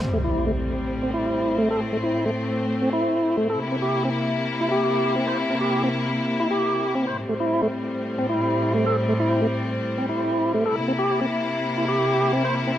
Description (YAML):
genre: breakbeat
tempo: 134 BPM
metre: 4/4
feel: straight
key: A phrygian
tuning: A4 = 440 Hz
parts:
  - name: clear studio string section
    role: sustained chords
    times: 0.0-12.8 s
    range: A2 to E4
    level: -24 LUFS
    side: left 1 dB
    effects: none
  - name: impact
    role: sound effects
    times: 0.0-1.8 s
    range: none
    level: -29 LUFS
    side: equal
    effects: none
  - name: tonewheel organ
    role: riff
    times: 0.1-12.7 s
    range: A3 to C5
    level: -24 LUFS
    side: equal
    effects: slow rotary speaker, tube saturation, low-pass filter, tape echo
room: light reverb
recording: dry, gritty hardware recording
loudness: -21 LUFS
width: side -11 dB against mid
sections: 0.0-12.8 A section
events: impact 0.0-1.8; filter sweep on tonewheel organ 0.0-12.8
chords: 0.0 Am7; 3.6 C7; 7.2 Am7; 10.8 C7